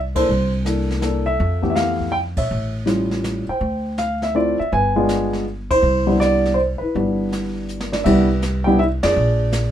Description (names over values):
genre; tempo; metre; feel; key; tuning
jazz piano trio; 162 BPM; 3/4; swing 65% on 8ths; C major; A4 = 438 Hz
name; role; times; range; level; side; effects
upright bass; bass; 0.0-9.7 s; G1 to F2; -22 LUFS; equal; none
dark baby grand piano; melody; 0.2-9.7 s; E3 to Ab5; -19 LUFS; equal; none
jazz brush drum kit; drums; 0.2-9.7 s; brushed snare drum, crash cymbal, hi-hat, kick drum, ride cymbal, snare drum; -29 LUFS; right 1 dB; none
room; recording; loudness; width
light reverb; minimal, uncompressed stereo recording; -17 LUFS; side -10 dB against mid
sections
0.0-8.1 A section; 8.1-9.7 B section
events
band accent 0.1, 2.3, 5.7, 9.0; drum fill 7.7-8.1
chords
0.3 C13; 1.4 Fmaj9#11; 2.5 A7b13; 3.6 Dm9; 4.7 G7b9; 5.8 Cmaj9; 9.2 Bb7